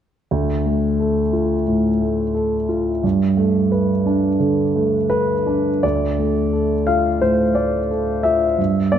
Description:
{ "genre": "neoclassical minimalist piano", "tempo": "88 BPM", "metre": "4/4", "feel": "rubato", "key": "D dorian", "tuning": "A4 = 435 Hz", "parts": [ { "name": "warm baby grand piano", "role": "solo", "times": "0.3-9.0 s", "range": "D2 to F5", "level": "-16 LUFS", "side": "equal", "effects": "slapback echo" } ], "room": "moderate concert hall reverb, RT60 1.8 s", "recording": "none", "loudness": "-16 LUFS", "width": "side -9 dB against mid", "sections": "0.3-5.8 A section; 5.8-9.0 B section", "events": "none", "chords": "0.3 Dm; 3.0 Gadd9; 5.8 Dm", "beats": "| 0.31 1.00 1.67 2.35 | 3.04 3.72 4.40 5.11 | 5.83 6.53 7.22 7.91 | 8.58" }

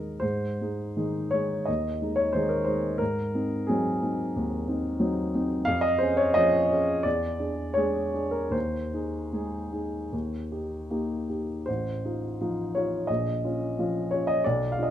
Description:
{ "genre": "classical, romantic character piece for solo piano", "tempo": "74-93 BPM", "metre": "4/4", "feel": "rubato", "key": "Ab major", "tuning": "A4 = 440 Hz", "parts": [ { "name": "warm upright piano", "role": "solo", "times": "0.0-14.9 s", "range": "A1 to F5", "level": "-25 LUFS", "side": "equal", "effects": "none" } ], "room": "moderate large studio reverb, RT60 1.1 s", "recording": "dark, warm production", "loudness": "-25 LUFS", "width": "side -11 dB against mid", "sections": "0.2-14.9 A section", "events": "none", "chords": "0.2 Ab; 3.0 Ab7; 5.7 Db/F; 7.0 E7; 8.5 Ab/Eb; 10.1 Eb; 11.7 F7/A; 13.1 Bbm", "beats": "| 0.23 0.97 1.68 2.34 | 3.00 3.69 4.35 5.00 | 5.66 6.36 7.05 7.76 | 8.54 9.33 10.13 10.90 | 11.68 12.40 13.08 13.77 | 14.44" }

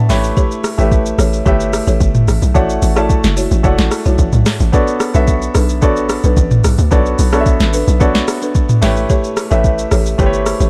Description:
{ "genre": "amapiano", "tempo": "110 BPM", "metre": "4/4", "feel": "straight", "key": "unclear", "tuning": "A4 = 442 Hz", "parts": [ { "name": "warm grand piano", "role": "accompaniment", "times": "0.0-10.7 s", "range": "A3 to B5", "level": "-21 LUFS", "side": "equal", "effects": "none" }, { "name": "hollow log drum bass", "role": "bass", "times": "0.1-10.7 s", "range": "F#1 to D2", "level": "-17 LUFS", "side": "equal", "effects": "none" }, { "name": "smooth R&B drum kit", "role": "drums", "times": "0.1-10.7 s", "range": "hi-hat, kick drum, rim click, shaker, snare drum, toms", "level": "-17 LUFS", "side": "equal", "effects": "overdrive" }, { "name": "folk marimba with medium mallets", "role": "stabs", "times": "0.4-10.7 s", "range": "D4 to C#5", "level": "-24 LUFS", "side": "equal", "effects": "tape echo" } ], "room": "little or no reverb", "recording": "dark, warm production", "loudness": "-13 LUFS", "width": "mono", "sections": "0.0-10.7 A section", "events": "grand piano fill 0.0-0.4", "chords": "0.1 A7; 2.6 Dmaj9; 4.7 Bm7; 8.8 A7", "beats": "| 0.37 0.92 1.46 2.01 | 2.55 3.10 3.64 4.19 | 4.73 5.28 5.83 6.37 | 6.92 7.46 8.01 8.55 | 9.10 9.64 10.19" }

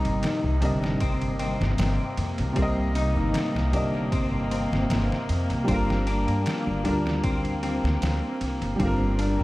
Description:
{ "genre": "trip hop", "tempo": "77 BPM", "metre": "4/4", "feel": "swing 53% on 16ths", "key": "C minor", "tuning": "A4 = 440 Hz", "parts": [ { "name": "dark upright piano", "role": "accompaniment", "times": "0.0-9.4 s", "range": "C3 to Eb5", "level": "-28 LUFS", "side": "equal", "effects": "harmonic tremolo, tape echo" }, { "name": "warm chamber string section", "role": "sustained chords", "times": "0.0-9.4 s", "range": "Bb3", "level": "-33 LUFS", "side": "equal", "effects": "none" }, { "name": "clean electric guitar", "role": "arpeggios", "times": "0.0-9.4 s", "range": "C4 to Eb4", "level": "-31 LUFS", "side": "left 2 dB", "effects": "ensemble chorus, analog delay" }, { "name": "trip hop sampler-style drum kit", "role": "drums", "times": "0.0-9.4 s", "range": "kick drum, ride cymbal, snare drum", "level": "-31 LUFS", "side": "equal", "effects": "overdrive, analog delay" }, { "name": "upright bass", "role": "bass", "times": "0.1-9.4 s", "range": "G1 to G2", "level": "-27 LUFS", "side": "equal", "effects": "none" } ], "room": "light reverb, small room ambience", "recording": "echo-heavy mix, vinyl crackle", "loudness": "-23 LUFS", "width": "side -18 dB against mid", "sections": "0.0-9.4 A section", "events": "none", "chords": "0.0 Cm7; 5.7 Gm7", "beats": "0.23 1.01 1.79 | 2.57 3.35 4.12 4.90 | 5.68 6.46 7.24 8.02 | 8.80" }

